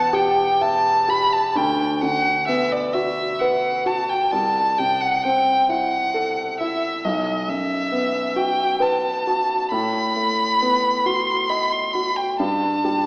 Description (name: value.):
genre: classical, romantic duo for violin and grand piano.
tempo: 44 BPM (dotted quarters).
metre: 6/8.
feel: rubato.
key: unclear.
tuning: A4 = 444 Hz.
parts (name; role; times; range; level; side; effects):
rich violin; melody; 0.0-13.1 s; D5 to C6; -19 LUFS; equal; none.
warm baby grand piano; accompaniment; 0.0-13.1 s; B1 to E5; -23 LUFS; equal; none.
room: wet concert hall reverb, RT60 2.0 s.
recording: heard from further back in the room, small speaker sound.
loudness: -18 LUFS.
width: side -27 dB against mid.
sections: 0.0-13.1 A section.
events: none.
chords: 0.0 Em; 1.5 Bm/D; 4.3 Am/C; 7.0 B5; 9.7 B7/A; 12.4 N.C..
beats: 0.12 | 1.55 2.94 | 4.32 5.69 | 7.03 8.35 | 9.70 11.04 | 12.38.